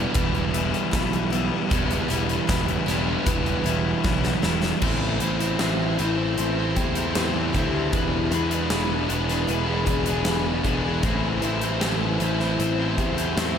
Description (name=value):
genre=rock, shoegaze and dream pop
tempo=77 BPM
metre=4/4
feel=straight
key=E minor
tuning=A4 = 440 Hz
part: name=picked twelve-string acoustic guitar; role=arpeggios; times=0.0-13.6 s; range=E3 to G#4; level=-31 LUFS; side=left 5 dB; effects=analog chorus, tape echo
part: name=biting overdriven guitar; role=riff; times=0.0-13.6 s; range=A2 to C5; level=-27 LUFS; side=left 8 dB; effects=wide subtle chorus
part: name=overdriven semi-hollow guitar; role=riff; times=0.0-13.6 s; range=E2 to E4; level=-27 LUFS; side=right 7 dB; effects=reverse reverb
part: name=fuzz picked electric bass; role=bass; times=0.0-13.6 s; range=E1 to E2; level=-27 LUFS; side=equal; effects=overdrive
part: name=huge arena drum kit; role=drums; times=0.1-13.5 s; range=crash cymbal, hi-hat, kick drum, snare drum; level=-28 LUFS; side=equal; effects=none
room=wet huge ambient reverb, RT60 4.1 s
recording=dreamy mix soaked in reverb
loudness=-21 LUFS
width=side -8 dB against mid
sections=0.0-4.8 A section; 4.8-13.6 B section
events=drum fill 4.0-4.8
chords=0.0 Em7; 4.8 Am7; 7.9 E7; 11.0 Am7